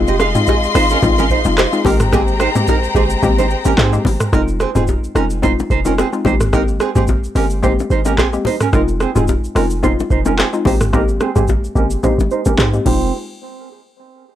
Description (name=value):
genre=afrobeats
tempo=109 BPM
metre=4/4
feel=swing 55% on 16ths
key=F minor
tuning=A4 = 438 Hz
part: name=hollow square pluck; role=accompaniment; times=0.0-13.1 s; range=Ab3 to G4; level=-20 LUFS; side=left 4 dB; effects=chorus, low-pass filter
part: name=warm studio string section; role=sustained chords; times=0.0-4.3 s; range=Ab3 to C6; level=-20 LUFS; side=left 3 dB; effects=none
part: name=warm 808-style bass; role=bass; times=0.0-13.1 s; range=Eb1 to Ab2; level=-18 LUFS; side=equal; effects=none
part: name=nylon-string guitar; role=riff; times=0.1-13.1 s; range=C4 to F5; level=-20 LUFS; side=right 8 dB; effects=low-pass filter, tape echo
part: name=booming analog drum machine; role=drums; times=0.1-13.1 s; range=crash cymbal, handclaps, hi-hat, kick drum, rim click, shaker, toms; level=-18 LUFS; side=equal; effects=vintage 12-bit sampler grit
part: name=bongos and congas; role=percussion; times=0.2-13.1 s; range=none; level=-22 LUFS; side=left 5 dB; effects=none
room=little or no reverb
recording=dry, gritty hardware recording, transformer saturation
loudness=-13 LUFS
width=side -12 dB against mid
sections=0.0-4.3 A section; 4.3-13.1 B section; 13.1-14.4 C section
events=filter sweep 4.3-13.1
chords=0.0 Fm7; 1.9 Abmaj9; 4.3 Fm7; 6.3 Abmaj9; 8.7 Fm7; 10.7 Abmaj9; 12.9 Fm7; 13.1 N.C.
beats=0.47 1.02 1.58 | 2.13 2.68 3.23 3.78 | 4.33 4.88 5.43 5.98 | 6.53 7.08 7.63 8.18 | 8.73 9.28 9.83 10.38 | 10.93 11.48 12.03 12.59